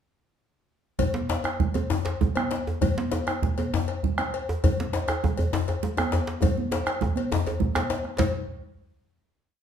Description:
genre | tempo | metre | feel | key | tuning
west african traditional, West African drum ensemble | 134 BPM (dotted quarters) | 12/8 | straight | none | none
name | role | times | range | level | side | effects
bombo | percussion | 1.0-8.3 s | none | -28 LUFS | right 2 dB | none
congas | percussion | 1.0-8.3 s | none | -31 LUFS | right 4 dB | none
cowbell | percussion | 1.0-8.3 s | none | -32 LUFS | left 4 dB | none
djembe | percussion | 1.0-8.3 s | none | -30 LUFS | left 6 dB | none
djembe | percussion | 1.1-8.3 s | none | -30 LUFS | right 1 dB | none
room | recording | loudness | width
wet large studio reverb, RT60 0.9 s | band playing live in one room | -24 LUFS | side -8 dB against mid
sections
1.0-8.2 A section; 8.2-9.6 final hit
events
speeding up 1.0-9.6; drum fill 6.4-8.2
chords
none

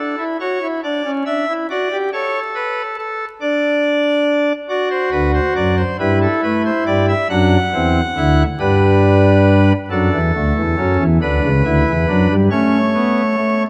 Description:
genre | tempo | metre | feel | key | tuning
classical, baroque-style 3-part fugue for pipe organ | 46 BPM (dotted quarters) | 6/8 | straight | unclear | A4 = 438 Hz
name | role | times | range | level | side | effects
pipe organ, cornet | solo | 0.0-13.6 s | C#2 to F#5 | -16 LUFS | equal | none
room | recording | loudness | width
moderate concert hall reverb, RT60 2.3 s | vinyl crackle | -16 LUFS | mono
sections
0.0-13.7 A section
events
none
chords
0.0 D; 0.8 Em7; 2.1 A; 3.4 N.C.; 4.7 D7; 6.0 Am7/G; 7.3 D7; 8.6 G; 9.9 D; 11.2 Em7; 12.5 A

